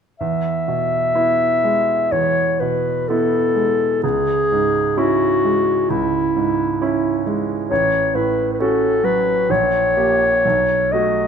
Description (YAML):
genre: classical, romantic duo for clarinet and grand piano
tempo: 57-68 BPM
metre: 4/4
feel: rubato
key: E major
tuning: A4 = 440 Hz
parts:
  - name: warm clarinet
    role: melody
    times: 0.2-11.3 s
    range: E4 to E5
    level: -17 LUFS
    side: left 3 dB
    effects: none
  - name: clear concert grand piano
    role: accompaniment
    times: 0.2-11.3 s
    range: A1 to G4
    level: -20 LUFS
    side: right 5 dB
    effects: none
room: light reverb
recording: none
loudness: -16 LUFS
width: side -7 dB against mid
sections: 0.2-11.3 A section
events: none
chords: 0.2 E; 4.0 C#m; 7.7 F#m/A; 9.5 A#m6; 10.4 B7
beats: | 0.20 1.15 2.12 3.08 | 4.03 4.97 5.89 6.80 | 7.70 8.59 9.50 10.44